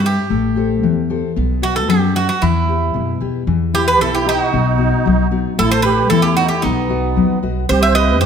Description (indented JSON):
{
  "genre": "greek folk, Greek bouzouki band",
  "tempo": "114 BPM",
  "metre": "2/4",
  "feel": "straight",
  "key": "E harmonic minor",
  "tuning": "A4 = 445 Hz",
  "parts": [
    { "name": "Greek bouzouki", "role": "melody", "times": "0.0-8.3 s", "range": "D#4 to E5", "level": "-18 LUFS", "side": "right 4 dB", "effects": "none" },
    { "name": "fingerpicked steel-string acoustic guitar", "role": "accompaniment", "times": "0.0-8.3 s", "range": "B2 to E5", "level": "-18 LUFS", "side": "left 6 dB", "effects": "none" },
    { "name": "upright bass", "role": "bass", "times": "0.0-8.3 s", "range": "A1 to G2", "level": "-20 LUFS", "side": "right 2 dB", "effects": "none" },
    { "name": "musette accordion", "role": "second line", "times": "3.7-8.3 s", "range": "B3 to C5", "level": "-20 LUFS", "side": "right 6 dB", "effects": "none" }
  ],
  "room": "moderate recital hall reverb, RT60 1.4 s",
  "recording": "none",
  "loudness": "-14 LUFS",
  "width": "side -7 dB against mid",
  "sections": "0.0-3.5 A section; 3.5-8.3 A section",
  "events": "none",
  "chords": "0.3 Am7; 1.4 B; 2.4 Em; 4.5 B; 5.6 Aadd9; 6.6 B; 7.7 C"
}